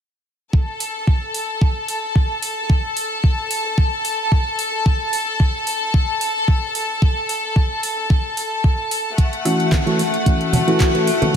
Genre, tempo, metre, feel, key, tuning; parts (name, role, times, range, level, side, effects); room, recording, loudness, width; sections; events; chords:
nu-disco, nu disco; 111 BPM; 4/4; swing 54% on 16ths; F# minor; A4 = 440 Hz
rich studio string section; sustained chords; 0.5-11.4 s; A3 to A5; -22 LUFS; left 1 dB; sidechain pumping
electronic kick drum; drums; 0.5-11.4 s; -15 LUFS; equal; overdrive
pop drum kit; drums; 0.8-11.3 s; handclaps, hi-hat, rim click; -27 LUFS; right 2 dB; overdrive
barky reed electric piano; accompaniment; 9.4-11.3 s; E3 to F#4; -18 LUFS; left 1 dB; overdrive, phaser, analog delay
congas; percussion; 9.7-11.3 s; -23 LUFS; right 2 dB
moderate lush hall reverb, RT60 2.0 s, digital ambience; dreamy mix soaked in reverb; -17 LUFS; side -8 dB against mid
0.5-11.4 A section
0.5 N.C.; 9.2 F#m7